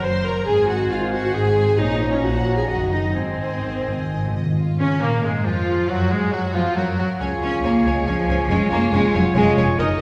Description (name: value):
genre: quick classical-period movement for symphony orchestra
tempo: 137 BPM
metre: 3/4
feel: rubato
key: Db major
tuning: A4 = 440 Hz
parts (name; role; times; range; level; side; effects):
- rich studio violin section; melody; 0.0-9.9 s; Ab3 to Ab5; -36 LUFS; equal; none
- bright oboe; second line; 0.0-9.9 s; Bb3 to Bb5; -34 LUFS; equal; none
- clear clarinet; second line; 0.0-9.9 s; F3 to Eb5; -34 LUFS; equal; none
- flute section; second line; 0.0-9.8 s; C5 to Db6; -36 LUFS; equal; none
- rich studio violin section; second line; 0.0-10.0 s; Db4 to C6; -37 LUFS; equal; none
- rich studio viola section; accompaniment; 0.0-9.9 s; F3 to Db5; -27 LUFS; equal; none
- warm French horn section; sustained chords; 0.0-10.0 s; Eb3 to Bb4; -31 LUFS; equal; none
- warm studio double bass section; bass; 0.0-9.9 s; F1 to Db3; -27 LUFS; equal; none
- bright studio cello section; bass; 0.1-9.7 s; Gb2 to Db4; -26 LUFS; equal; none
- timpani; percussion; 0.5-1.1, 3.2-4.5 s; Ab2; -29 LUFS; equal; none
- clear trumpet; stabs; 4.8-10.0 s; Gb3 to Eb5; -32 LUFS; equal; none
room: wet scoring stage reverb, RT60 1.7 s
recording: heard from further back in the room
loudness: -20 LUFS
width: mono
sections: 0.0-4.6 A section; 4.6-10.0 B section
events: timpani fill 3.2-4.6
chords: 0.5 Ab; 1.8 Bbm; 2.7 Ebm/Gb; 3.2 Ab; 4.6 Db; 5.9 Gbmaj9; 7.2 Db; 8.5 Db/F